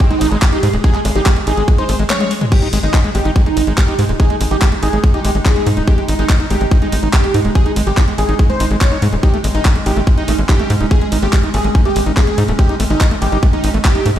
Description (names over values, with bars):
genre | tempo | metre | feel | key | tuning
psychedelic trance | 143 BPM | 4/4 | straight | unclear | A4 = 440 Hz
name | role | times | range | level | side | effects
vowel-sweep wobble bass | second line | 0.0-1.2 s | Ab3 to Eb4 | -31 LUFS | left 4 dB | wide subtle chorus, sidechain pumping, high-pass filter, tape echo
evolving wavetable pad | sustained chords | 0.0-14.2 s | Ab3 to Ab4 | -24 LUFS | equal | chorus, built-in reverb, sidechain pumping
overdriven acid bass | riff | 0.0-14.2 s | Ab3 to Eb4 | -23 LUFS | moving between left 5 dB and right 7 dB | distortion, auto-pan, sidechain pumping, dub echo
electronic kick drum | drums | 0.0-13.9 s | none | -12 LUFS | equal | overdrive, small room reverb
garage drum kit | drums | 0.0-14.2 s | crash cymbal, handclaps, hi-hat, ride cymbal, toms | -23 LUFS | equal | overdrive, small room reverb
wide unison lead | melody | 0.1-14.1 s | Eb4 to Db5 | -20 LUFS | right 1 dB | phaser, sidechain pumping, tape echo
tight sequencer bass | bass | 0.2-14.2 s | Eb1 to Ab2 | -16 LUFS | equal | none
room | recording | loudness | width
digital ambience | played on a big sound system in a bare room, stone room reverb | -12 LUFS | side -11 dB against mid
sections
0.0-2.5 A section; 2.5-14.2 A section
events
drop 0.0-2.5, 2.5-14.2; kick drops out 2.1-2.5; drum fill 2.1-2.5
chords
0.0 Ab5